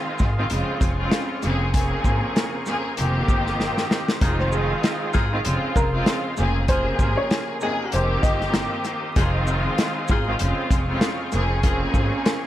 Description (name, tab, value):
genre	hip hop, boom-bap hip-hop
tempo	97 BPM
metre	4/4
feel	swing 56% on 16ths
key	F minor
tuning	A4 = 440 Hz
part	rich studio string section	accompaniment	0.0-12.5 s	F2 to Ab4	-25 LUFS	equal	cassette tape, high-pass filter, low-pass filter, tape echo
part	lush unison pad	sustained chords	0.0-12.5 s	Ab4 to Eb6	-33 LUFS	right 1 dB	chorus, high-pass filter, low-pass filter
part	upright bass	bass	0.2-12.1 s	F1 to Ab1	-24 LUFS	equal	none
part	warm soul drum kit	drums	0.2-12.4 s	hi-hat, kick drum, shaker, snare drum	-23 LUFS	equal	tape echo
part	warm saxophone section	stabs	4.2-11.8 s	C3 to Ab4	-32 LUFS	left 2 dB	high-pass filter, low-pass filter, tape echo
part	dark upright piano	melody	4.4-8.5 s	Ab4 to Eb5	-27 LUFS	equal	high-pass filter, low-pass filter, tape echo
room	small room ambience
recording	echo-heavy mix, vinyl crackle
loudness	-20 LUFS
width	side -13 dB against mid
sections	0.0-4.2 A section; 4.2-12.5 B section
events	drum fill 3.6-4.2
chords	0.0 Fm7; 0.5 Dbmaj7/F; 1.4 Bbm9/F; 3.0 Cm7/F; 4.2 Fm7; 5.5 Dbmaj7/F; 6.4 Bbm9/F; 7.9 Cm7/F; 9.2 Fm7; 10.4 Dbmaj7/F; 11.3 Bbm9/F